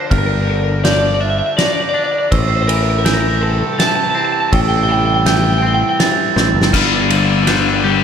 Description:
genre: post-rock.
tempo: 82 BPM.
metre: 3/4.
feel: straight.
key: G dorian.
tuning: A4 = 440 Hz.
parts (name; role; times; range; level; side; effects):
twelve-string electric guitar; melody; 0.0-6.0 s; A4 to A5; -18 LUFS; equal; spring reverb, slapback echo.
glockenspiel with rubber mallets; arpeggios; 0.0-8.0 s; E6 to Bb6; -21 LUFS; right 7 dB; slapback echo.
twangy electric guitar; arpeggios; 0.0-8.0 s; G2 to G4; -22 LUFS; left 3 dB; slapback echo.
picked electric bass; bass; 0.1-8.0 s; G1 to A1; -17 LUFS; equal; none.
loose indie drum kit; drums; 0.1-7.6 s; crash cymbal, kick drum, ride cymbal, snare drum; -19 LUFS; equal; none.
deep dark ambient pad; sustained chords; 3.7-8.0 s; C3 to G5; -24 LUFS; equal; chorus, built-in reverb.
biting overdriven guitar; riff; 6.7-8.0 s; G2 to G3; -15 LUFS; left 10 dB; none.
room: moderate concert hall reverb, RT60 2.3 s.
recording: big arena sound.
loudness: -12 LUFS.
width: side -7 dB against mid.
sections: 0.0-6.7 A section; 6.7-8.0 B section.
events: drum fill 6.4-6.7, 6.7-8.0; build-up 6.7-8.0.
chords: 0.0 Gm7; 2.3 Am7; 6.7 Gm7.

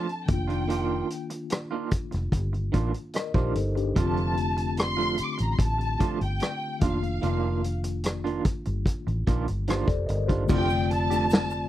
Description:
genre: lush 1970s-style soul.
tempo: 74 BPM.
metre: 4/4.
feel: straight.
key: F mixolydian.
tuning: A4 = 440 Hz.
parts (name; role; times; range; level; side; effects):
warm studio violin section; melody; 0.0-11.7 s; F5 to D6; -31 LUFS; left 1 dB; none.
mellow tine electric piano; accompaniment; 0.0-11.7 s; D3 to Eb5; -32 LUFS; left 4 dB; medium stereo tremolo.
electric guitar through a small old amp; riff; 0.0-11.6 s; Eb3 to G4; -30 LUFS; right 7 dB; tremolo.
vintage drum kit; drums; 0.1-11.5 s; crash cymbal, hi-hat, kick drum, rim click, snare drum; -26 LUFS; equal; none.
vintage muted fingered electric bass; bass; 0.3-11.7 s; F1 to Bb1; -28 LUFS; equal; none.
tube shaker; percussion; 10.5-11.7 s; none; -49 LUFS; right 24 dB; none.
vibraphone with medium hard mallets; texture; 10.5-11.7 s; D5; -39 LUFS; left 6 dB; stereo widening.
room: little or no reverb.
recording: dry, close 1970s-style studio recording.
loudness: -24 LUFS.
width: side -13 dB against mid.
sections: 0.0-10.5 A section; 10.5-11.7 B section.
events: none.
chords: 0.3 F13sus4; 4.0 F6; 6.8 F13sus4; 10.5 F6.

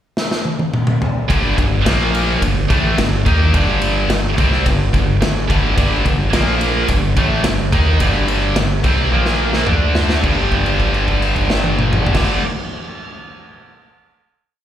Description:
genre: hard rock.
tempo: 107 BPM.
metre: 4/4.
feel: straight.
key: G minor.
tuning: A4 = 440 Hz.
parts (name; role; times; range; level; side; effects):
big rock drum kit; drums; 0.2-12.3 s; crash cymbal, kick drum, ride cymbal, snare drum, toms; -19 LUFS; equal; none.
heavy high-gain guitar; riff; 1.3-12.4 s; G2 to Eb4; -20 LUFS; right 9 dB; distortion, slapback echo.
scooped high-gain guitar; riff; 1.3-12.4 s; G2 to Eb4; -20 LUFS; left 6 dB; distortion, slapback echo.
gritty driven synth bass; bass; 1.3-12.4 s; G1 to Eb2; -18 LUFS; equal; none.
room: light reverb.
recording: live gig heard through the venue's PA, club reverb.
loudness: -14 LUFS.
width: side -10 dB against mid.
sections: 0.0-1.3 pickup bar; 1.3-10.2 riff; 10.2-12.5 final chord.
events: drum fill 0.2-1.3, 9.1-10.2; held note 10.2-12.1.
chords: 0.0 N.C.; 1.3 G5; 1.9 Bb5; 2.4 Gm; 6.3 Bb5; 6.9 Gm; 9.1 Bb5; 9.7 D5; 10.2 G5.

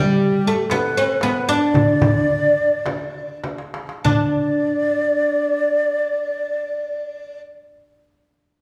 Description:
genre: Arabic maqam ensemble.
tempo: 96-120 BPM.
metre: 4/4.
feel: straight.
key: D maqam rast.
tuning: A4 = 440 Hz.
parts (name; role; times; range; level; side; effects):
oud; melody; 0.0-7.4 s; G3 to D4; -22 LUFS; equal; none.
breathy low ney; second line; 0.0-7.4 s; G4 to D5; -23 LUFS; equal; none.
darbuka; percussion; 0.1-4.3 s; none; -29 LUFS; equal; none.
frame drum; percussion; 0.7-4.3 s; none; -26 LUFS; equal; none.
room: wet large studio reverb, RT60 1.3 s.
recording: band playing live in one room.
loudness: -19 LUFS.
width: mono.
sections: 0.0-4.0 A section; 4.0-8.6 B section.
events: slowing down 0.0-4.0; drum fill 3.4-4.0.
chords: none.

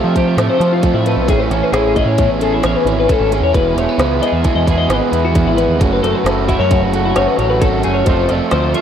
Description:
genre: math rock and midwest emo.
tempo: 133 BPM.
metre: 5/4.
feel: straight.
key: unclear.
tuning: A4 = 440 Hz.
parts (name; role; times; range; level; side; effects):
twangy electric guitar; accompaniment; 0.0-8.8 s; E2 to G#4; -20 LUFS; right 6 dB; dub echo.
twelve-string electric guitar; arpeggios; 0.0-8.8 s; E4 to E5; -18 LUFS; left 6 dB; wide subtle chorus.
biting overdriven guitar; riff; 0.0-8.8 s; A2 to F#4; -19 LUFS; right 1 dB; dub echo.
growling picked electric bass; bass; 0.0-8.7 s; E1 to F3; -18 LUFS; equal; overdrive.
organic electronic drum kit; drums; 0.2-8.8 s; hi-hat, kick drum, snare drum; -19 LUFS; equal; none.
room: light reverb.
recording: echo-heavy mix.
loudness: -12 LUFS.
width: side -8 dB against mid.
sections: 0.0-8.8 A section.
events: none.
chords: 0.0 Fmaj7; 1.3 Amaj7; 3.6 Emaj7; 5.8 F#m7; 8.1 F.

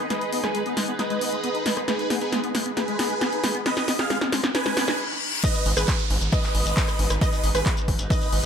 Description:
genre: uplifting trance.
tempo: 135 BPM.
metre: 4/4.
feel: straight.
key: G# minor.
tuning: A4 = 441 Hz.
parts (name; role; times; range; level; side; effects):
lush unison pad; sustained chords; 0.0-8.5 s; D#4 to B4; -33 LUFS; right 2 dB; chorus, phaser, sidechain pumping.
liquid acid bass; arpeggios; 0.0-4.9 s; G#3 to D#4; -31 LUFS; left 2 dB; ensemble chorus, sidechain pumping, ping-pong delay.
riser, reverse cymbal and downlifter; sound effects; 3.2-8.5 s; none; -33 LUFS; equal; none.
big supersaw lead; melody; 0.1-8.5 s; B3 to G#5; -28 LUFS; equal; phaser, sidechain pumping, low-pass filter, ping-pong delay.
punchy analog drum machine; drums; 0.1-8.4 s; crash cymbal, handclaps, hi-hat, rim click, snare drum; -27 LUFS; left 1 dB; none.
wide unison pluck; second line; 5.4-8.5 s; B4 to D#5; -31 LUFS; right 2 dB; sidechain pumping.
electronic kick drum; drums; 5.4-8.2 s; none; -23 LUFS; equal; overdrive.
shekere; percussion; 5.4-8.5 s; none; -34 LUFS; left 4 dB; none.
gritty driven synth bass; bass; 5.7-8.4 s; G#1; -25 LUFS; equal; sidechain pumping.
room: moderate digital room reverb, RT60 1.1 s, digital ambience.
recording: none.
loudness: -21 LUFS.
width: side -7 dB against mid.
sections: 0.0-5.4 A section; 5.4-8.5 B section.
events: build-up 0.0-5.4; drum fill 0.0-5.0; reverse cymbal 4.7-5.4; stop 5.0-5.4; drop 5.4-8.5.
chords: 0.0 G#m.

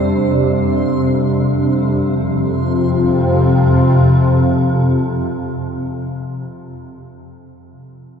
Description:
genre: dark ambient drone.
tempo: free time.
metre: none.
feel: none.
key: unclear.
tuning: A4 = 440 Hz.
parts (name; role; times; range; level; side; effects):
sweeping resonant pad; sustained chords; 0.0-5.8 s; C3 to F4; -17 LUFS; equal; chorus.
swarming drone; drone; 0.0-5.5 s; F2 to C3; -16 LUFS; left 1 dB; built-in reverb.
backwards swelling texture; texture; 0.0-2.0 s; C5; -27 LUFS; right 3 dB; built-in reverb.
room: wet cathedral reverb, RT60 5.9 s.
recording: dark, warm production.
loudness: -13 LUFS.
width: side -7 dB against mid.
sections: 0.0-2.0 A section; 2.0-6.0 B section.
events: none.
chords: 0.0 Csus2; 2.0 F5.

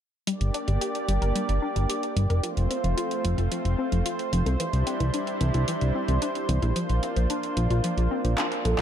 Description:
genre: synthwave.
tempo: 111 BPM.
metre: 4/4.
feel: straight.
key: G dorian.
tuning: A4 = 440 Hz.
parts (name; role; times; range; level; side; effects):
lush unison pad; sustained chords; 0.3-8.8 s; G3 to D5; -29 LUFS; right 2 dB; chorus.
analog pluck; arpeggios; 0.3-8.8 s; E3 to Bb4; -31 LUFS; left 3 dB; chorus, cassette tape, ping-pong delay.
pop drum kit; drums; 0.3-8.8 s; handclaps, hi-hat; -32 LUFS; right 1 dB; none.
fat analog bass; bass; 0.4-8.8 s; F1 to C2; -24 LUFS; equal; none.
warm velvety synth lead; melody; 8.7-8.8 s; A4; -26 LUFS; right 3 dB; chorus.
room: light reverb.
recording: dark, warm production.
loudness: -23 LUFS.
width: side -10 dB against mid.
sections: 0.3-8.8 A section.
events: filter sweep on analog synth bass 0.3-8.8; drum fill 8.4-8.8.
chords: 0.3 Gm; 2.4 F; 4.6 Cadd9; 6.8 Bbadd9.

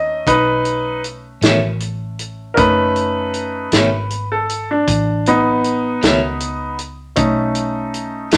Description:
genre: slow blues.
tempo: 52 BPM (dotted quarters).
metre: 12/8.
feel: straight.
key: B mixolydian.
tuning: A4 = 441 Hz.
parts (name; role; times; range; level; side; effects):
bright upright piano; accompaniment; 0.0-8.3 s; A3 to D#5; -19 LUFS; equal; none.
vintage muted fingered electric bass; bass; 0.0-8.4 s; F#1 to D#2; -27 LUFS; equal; none.
warm soul drum kit; drums; 0.3-8.4 s; hi-hat, kick drum, snare drum; -20 LUFS; equal; none.
clean electric guitar; accompaniment; 1.4-8.4 s; B2 to C#4; -20 LUFS; equal; tremolo.
room: moderate studio reverb, RT60 0.7 s.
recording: none.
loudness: -17 LUFS.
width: mono.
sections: 0.0-8.4 A section.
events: upright piano solo 0.0-8.4.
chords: 0.0 B9.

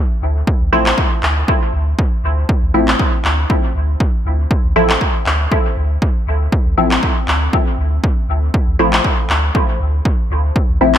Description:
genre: dub techno.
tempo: 119 BPM.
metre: 4/4.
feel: swing 54% on 16ths.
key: D minor.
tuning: A4 = 440 Hz.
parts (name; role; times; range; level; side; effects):
pure sine sub bass; bass; 0.2-11.0 s; A1 to D2; -17 LUFS; equal; sidechain pumping.
electronic kick drum; drums; 0.5-10.7 s; none; -16 LUFS; equal; none.
filtered dub chord stab; stabs; 0.7-11.0 s; F3 to E4; -18 LUFS; left 1 dB; chorus, phaser, sidechain pumping, dub echo.
electronic handclaps; drums; 0.9-11.0 s; none; -18 LUFS; left 1 dB; gated reverb, dub echo.
room: light reverb, digital ambience.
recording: bright 1980s-style digital production.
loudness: -13 LUFS.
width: side -10 dB against mid.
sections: 0.0-11.0 A section.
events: none.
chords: 0.0 Dm9.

